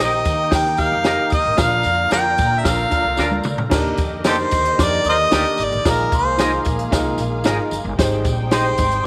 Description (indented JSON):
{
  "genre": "uptempo 1960s-style soul",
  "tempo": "112 BPM",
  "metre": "4/4",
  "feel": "straight",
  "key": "Eb major",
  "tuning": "A4 = 440 Hz",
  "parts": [
    { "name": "warm harmonica", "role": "melody", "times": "0.0-9.0 s", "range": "G4 to G5", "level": "-21 LUFS", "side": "equal", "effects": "slapback echo" },
    { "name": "dark studio string section", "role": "second line", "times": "0.0-9.1 s", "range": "Bb3 to Bb5", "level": "-31 LUFS", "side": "equal", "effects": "none" },
    { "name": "glockenspiel with soft plastic mallets", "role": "second line", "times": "0.0-9.1 s", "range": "Bb5 to G6", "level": "-32 LUFS", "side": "equal", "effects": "none" },
    { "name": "dark upright piano", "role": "accompaniment", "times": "0.0-9.1 s", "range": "D4 to C5", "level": "-28 LUFS", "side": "equal", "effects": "none" },
    { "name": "overdriven tonewheel organ", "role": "sustained chords", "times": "0.0-9.1 s", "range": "D3 to G4", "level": "-34 LUFS", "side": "equal", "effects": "none" },
    { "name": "electric guitar through a small old amp", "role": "stabs", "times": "0.0-8.6 s", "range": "Bb3 to Eb5", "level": "-28 LUFS", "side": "equal", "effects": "tremolo" },
    { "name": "upright bass", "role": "bass", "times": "0.0-9.0 s", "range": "Gb1 to Eb3", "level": "-28 LUFS", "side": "equal", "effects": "none" },
    { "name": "compact cocktail drum kit", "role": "drums", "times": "0.3-9.0 s", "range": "crash cymbal, hi-hat, kick drum, snare drum, toms", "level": "-24 LUFS", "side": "equal", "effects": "none" },
    { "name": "tambourine", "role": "percussion", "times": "0.3-8.9 s", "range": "none", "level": "-36 LUFS", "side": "equal", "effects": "none" }
  ],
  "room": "light reverb, studio ambience",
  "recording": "none",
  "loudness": "-18 LUFS",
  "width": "mono",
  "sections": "0.0-3.7 A section; 3.7-9.1 B section",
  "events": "drum fill 3.2-3.7",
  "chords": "0.0 Eb; 1.6 Bb; 3.7 Ebmaj7; 5.9 Bb7sus4; 8.0 Abmaj7"
}